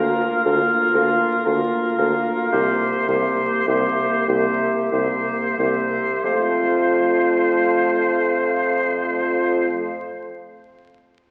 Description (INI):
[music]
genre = classical, slow romantic movement for wind quintet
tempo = 29-41 BPM (dotted quarters)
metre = 12/8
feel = rubato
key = F major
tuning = A4 = 438 Hz
[part]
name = silver concert flute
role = melody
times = 0.0-9.7 s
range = E5 to F5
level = -30 LUFS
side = equal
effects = none
[part]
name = clear oboe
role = second line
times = 0.0-9.7 s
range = Bb4 to C5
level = -25 LUFS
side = equal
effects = none
[part]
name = clear French horn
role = accompaniment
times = 0.0-9.7 s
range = A3 to Bb3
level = -31 LUFS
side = equal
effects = none
[part]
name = clear clarinet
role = accompaniment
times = 0.0-9.7 s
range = F4 to G4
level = -28 LUFS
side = equal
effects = none
[part]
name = warm bassoon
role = bass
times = 0.0-9.7 s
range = C2 to F2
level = -24 LUFS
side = equal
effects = none
[sound]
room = wet concert hall reverb, RT60 2.3 s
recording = very old 78 rpm record, vinyl crackle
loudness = -20 LUFS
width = mono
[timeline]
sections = 0.0-6.2 A section; 6.2-11.3 B section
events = slowing down 0.0-6.2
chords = 0.0 Bb/D; 2.5 C7; 6.2 F